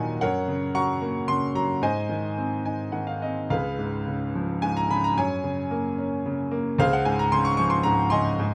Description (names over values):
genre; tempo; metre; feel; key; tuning
classical, lyrical solo piano; 110 BPM; 3/4; uneven beats, rubato; Db major; A4 = 442 Hz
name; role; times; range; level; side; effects
bright grand piano; solo; 0.0-8.5 s; Db2 to Db6; -25 LUFS; equal; none
room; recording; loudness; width
light reverb; close, detailed microphones; -25 LUFS; mono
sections
0.0-8.5 A section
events
grand piano fill 0.0, 2.4-3.5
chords
0.2 Gb; 1.8 Ab; 3.5 Db7; 5.2 Gb; 6.8 Dbmaj7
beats
| 0.21 0.74 1.27 | 1.82 2.37 2.93 | 3.51 4.08 4.63 | 5.18 5.73 6.27 | 6.79 7.32 7.85 | 8.39